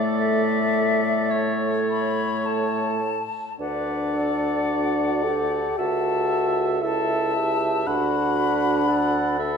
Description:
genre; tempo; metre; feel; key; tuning
classical, slow romantic movement for wind quintet; 50-59 BPM; 4/4; rubato; D major; A4 = 439 Hz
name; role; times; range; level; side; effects
warm oboe; second line; 0.0-9.6 s; C#5 to F#5; -29 LUFS; left 2 dB; none
clear French horn; accompaniment; 0.0-9.6 s; A3 to A4; -25 LUFS; left 1 dB; none
clear clarinet; accompaniment; 0.0-9.6 s; F#4 to B4; -30 LUFS; right 10 dB; none
mellow bassoon; bass; 0.0-9.6 s; C#2 to A2; -29 LUFS; right 3 dB; none
silver concert flute; melody; 0.1-9.6 s; E5 to B5; -27 LUFS; left 5 dB; none
room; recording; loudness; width
moderate scoring stage reverb, RT60 2.0 s; minimal, uncompressed stereo recording; -20 LUFS; side -6 dB against mid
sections
0.0-9.6 A section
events
none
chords
0.0 Asus4; 3.6 D; 5.8 A7/C#; 7.9 D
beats
0.14 1.31 2.46 | 3.60 4.70 5.78 6.83 | 7.87 8.88

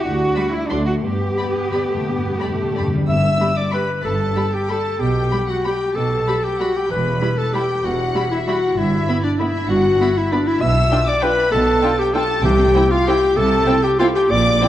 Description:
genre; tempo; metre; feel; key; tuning
classical; 164-212 BPM; 3/4; rubato; G major, C major from 10.6 s; A4 = 441 Hz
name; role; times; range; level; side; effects
warm French horn section; sustained chords; 0.0-2.9 s; A3 to D4; -28 LUFS; left 3 dB; none
rich studio cello section; bass; 0.0-14.6 s; E2 to G4; -24 LUFS; right 1 dB; none
rich studio double bass section; bass; 0.0-14.6 s; E1 to G2; -23 LUFS; right 2 dB; none
warm studio violin section; melody; 0.4-14.7 s; G5 to C6; -31 LUFS; left 3 dB; none
rich studio violin section; second line; 0.4-14.7 s; D5 to E6; -26 LUFS; left 2 dB; none
warm studio viola section; accompaniment; 0.4-14.7 s; F#3 to G4; -26 LUFS; right 1 dB; none
timpani; percussion; 1.0-3.5, 12.4-12.9 s; G2 to C3; -25 LUFS; left 1 dB; none
warm clarinet; second line; 3.1-14.7 s; D4 to E5; -18 LUFS; left 1 dB; none
room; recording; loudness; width
wet scoring stage reverb, RT60 2.0 s; worn, warbling old tape, cassette tape, warbly pitch drift; -16 LUFS; side -12 dB against mid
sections
0.0-3.1 A section; 3.1-14.7 B section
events
timpani fill 1.0-3.1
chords
0.0 G5/D; 0.7 D7; 1.0 G; 5.0 G/B; 6.9 Em; 8.8 Em/G; 10.6 G7/B; 12.4 C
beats
| 0.04 0.36 0.70 | 1.03 1.38 1.74 | 2.07 2.40 2.76 | 3.09 3.40 3.73 | 4.04 4.36 4.69 | 5.00 5.32 5.65 | 5.96 6.28 6.60 | 6.90 7.21 7.54 | 7.84 8.14 8.46 | 8.77 9.07 9.39 | 9.69 10.00 10.32 | 10.62 10.92 11.23 | 11.53 11.83 12.15 | 12.44 12.75 13.07 | 13.36 13.67 13.99 | 14.30 14.61

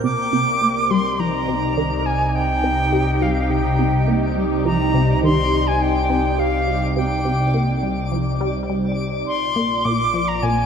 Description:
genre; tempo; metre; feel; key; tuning
ambient, sequencer-driven space music; 104 BPM; 4/4; straight; C minor; A4 = 439 Hz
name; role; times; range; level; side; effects
silver concert flute; melody; 0.0-10.7 s; F5 to D6; -22 LUFS; equal; shimmer reverb, ping-pong delay
phased analog pad; sustained chords; 0.0-10.7 s; Bb2 to D5; -22 LUFS; equal; phaser, chorus, shimmer reverb
resonant blip pluck; riff; 0.0-10.6 s; Bb2 to G4; -23 LUFS; equal; phaser, ping-pong delay
fat analog bass; bass; 0.0-10.7 s; Bb1 to C2; -26 LUFS; equal; none
twinkling granular texture; texture; 0.0-10.7 s; D5; -32 LUFS; left 2 dB; built-in reverb, shimmer reverb
room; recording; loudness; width
wet plate reverb, RT60 3.0 s; none; -17 LUFS; side -7 dB against mid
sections
0.0-10.7 A section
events
none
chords
0.0 Cm; 9.3 Bb7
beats
| 0.04 0.62 1.20 1.77 | 2.35 2.93 3.50 4.08 | 4.66 5.23 5.81 6.39 | 6.96 7.54 8.12 8.70 | 9.27 9.85 10.43

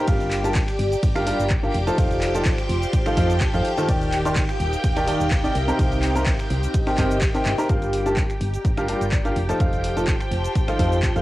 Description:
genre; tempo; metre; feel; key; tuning
piano house; 126 BPM; 4/4; swing 54% on 16ths; G minor; A4 = 440 Hz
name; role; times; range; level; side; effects
string machine, violins; sustained chords; 0.0-11.2 s; G4 to G5; -30 LUFS; equal; ensemble chorus, sidechain pumping, cassette tape
clear upright piano; riff; 0.0-11.2 s; C3 to C6; -24 LUFS; equal; sidechain pumping, cassette tape
airy breathy pad; texture; 0.0-11.2 s; C4 to Bb5; -29 LUFS; equal; chorus, phaser, sidechain pumping, cassette tape
solid FM bass; bass; 0.1-11.2 s; Eb1 to F2; -26 LUFS; equal; sidechain pumping
electronic kick drum; drums; 0.1-11.1 s; none; -22 LUFS; equal; cassette tape
punchy analog drum machine; drums; 0.1-11.2 s; finger snaps, handclaps, hi-hat, ride cymbal, shaker; -32 LUFS; equal; cassette tape
room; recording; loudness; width
little or no reverb; home recording on cassette; -19 LUFS; side -16 dB against mid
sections
0.0-7.7 A section; 7.7-11.2 B section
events
drop 0.0-7.7; drum fill 7.5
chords
0.1 Gm7; 1.7 F7; 3.9 Ebmaj7; 5.6 Cm7; 7.7 Gm7; 9.4 F7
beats
| 0.08 0.55 1.03 1.50 | 1.98 2.46 2.93 3.41 | 3.89 4.36 4.84 5.32 | 5.79 6.27 6.74 7.22 | 7.70 8.17 8.65 9.12 | 9.60 10.08 10.55 11.03

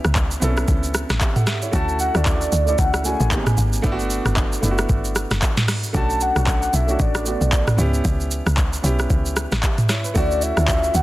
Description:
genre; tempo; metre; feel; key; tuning
amapiano; 114 BPM; 4/4; swing 58% on 16ths; unclear; A4 = 444 Hz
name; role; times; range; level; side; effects
warm grand piano; accompaniment; 0.0-11.0 s; C#3 to F#5; -26 LUFS; right 2 dB; none
woody log drum bass; bass; 0.0-11.0 s; F#1 to D2; -21 LUFS; equal; none
smooth R&B drum kit; drums; 0.0-11.0 s; handclaps, hi-hat, kick drum, rim click, shaker, snare drum, toms; -20 LUFS; equal; overdrive
soft octave-layered synth lead; melody; 1.7-11.0 s; D5 to A5; -24 LUFS; equal; chorus, phaser, digital delay
room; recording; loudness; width
digital ambience; dense, heavily limited modern master; -17 LUFS; side -17 dB against mid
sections
0.0-11.0 A section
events
none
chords
0.0 A9; 1.7 Dmaj7; 3.3 G#maj9; 3.8 Gmaj9; 5.9 Bm9; 7.8 A9 (rootless); 10.2 Dmaj7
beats
0.15 0.68 1.21 | 1.73 2.26 2.79 3.31 | 3.84 4.37 4.89 5.42 | 5.95 6.47 7.00 7.52 | 8.05 8.58 9.10 9.63 | 10.15 10.68

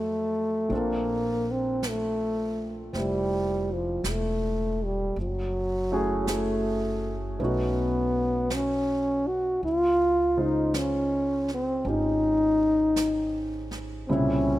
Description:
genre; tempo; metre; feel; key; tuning
jazz; 54 BPM; 4/4; swing 67% on 8ths; unclear; A4 = 440 Hz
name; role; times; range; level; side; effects
mellow trombone; melody; 0.0-14.6 s; F3 to F#4; -25 LUFS; equal; none
warm concert grand piano; accompaniment; 0.0-14.6 s; Bb2 to C5; -31 LUFS; right 1 dB; none
upright bass; bass; 0.0-14.6 s; E1 to F2; -34 LUFS; equal; none
jazz brush drum kit; drums; 0.7-14.6 s; brushed snare drum, hi-hat, snare drum; -38 LUFS; right 2 dB; none
room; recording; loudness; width
light reverb, small room reverb; rough home demo mix; -24 LUFS; side -15 dB against mid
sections
0.0-14.6 A section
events
none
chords
0.0 F7b9; 0.7 Bbmaj9; 5.2 Gbm7; 7.4 B9; 9.6 Dbmaj9; 14.1 C7b9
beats
| 0.71 1.82 2.93 4.04 | 5.16 6.28 7.39 8.51 | 9.63 10.74 11.86 12.97 | 14.08

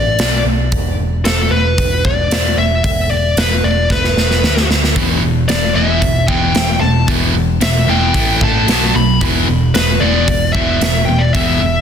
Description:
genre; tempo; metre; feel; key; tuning
hard rock; 113 BPM; 4/4; straight; E minor; A4 = 440 Hz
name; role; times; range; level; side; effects
high-gain lead guitar; melody; 0.0-11.8 s; A4 to B5; -18 LUFS; left 2 dB; distortion, digital delay
picked electric bass; bass; 0.0-11.8 s; E1 to D2; -18 LUFS; equal; none
big rock drum kit; drums; 0.2-11.5 s; hi-hat, kick drum, snare drum; -16 LUFS; equal; none
cranked stack guitar; riff; 5.0-11.8 s; E2 to B3; -18 LUFS; right 10 dB; overdrive
sludgy distorted guitar; riff; 5.0-11.8 s; E2 to B3; -18 LUFS; left 11 dB; overdrive
room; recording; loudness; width
light reverb; dense, heavily limited modern master; -11 LUFS; side -8 dB against mid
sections
0.0-11.8 A section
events
drum fill 3.9-5.0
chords
0.2 Bm; 0.7 E5; 4.4 Bm/D; 5.0 Em; 8.2 A5; 8.7 B5; 9.2 E5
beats
0.19 | 0.72 1.25 1.78 2.31 | 2.84 3.37 3.90 4.43 | 4.96 5.49 6.03 6.56 | 7.09 7.62 8.15 8.68 | 9.22 9.75 10.28 10.82 | 11.35

